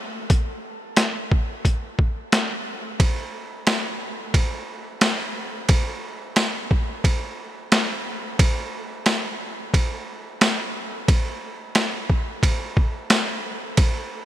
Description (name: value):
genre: dream pop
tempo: 89 BPM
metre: 4/4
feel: straight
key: none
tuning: none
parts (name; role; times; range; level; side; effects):
- boom bap sampler-style drum kit; drums; 0.3-13.9 s; hi-hat, kick drum, ride cymbal, snare drum, tambourine; -21 LUFS; equal; none
room: light reverb, digital ambience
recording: none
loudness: -20 LUFS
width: side -13 dB against mid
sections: 0.0-3.0 A section; 3.0-14.2 B section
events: none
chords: none